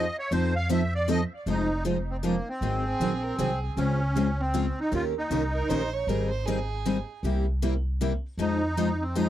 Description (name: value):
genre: acoustic string swing (jazz manouche)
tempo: 156 BPM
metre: 3/4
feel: swing 61% on 8ths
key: F minor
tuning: A4 = 440 Hz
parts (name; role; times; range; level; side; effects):
- musette accordion; melody; 0.0-5.9, 8.4-9.3 s; Bb3 to F5; -30 LUFS; right 1 dB; tape echo
- picked steel-string acoustic guitar; accompaniment; 0.0-9.3 s; C3 to C5; -29 LUFS; left 6 dB; none
- picked steel-string acoustic guitar; accompaniment; 0.0-9.3 s; C3 to Bb4; -32 LUFS; right 8 dB; none
- upright bass; bass; 0.0-9.3 s; F1 to F2; -29 LUFS; equal; none
- warm violin; second line; 2.8-7.2 s; Ab4 to Db5; -34 LUFS; right 7 dB; none
room: light reverb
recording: dry, close 1970s-style studio recording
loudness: -25 LUFS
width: side -12 dB against mid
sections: 0.0-1.5 A section; 1.5-9.3 B section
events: accordion solo 0.0-1.5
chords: 0.3 F7; 1.5 Fm7; 2.6 Ab7; 3.8 Dbmaj7; 4.9 Eb7; 6.1 Abmaj7; 7.2 C7; 8.4 Fm7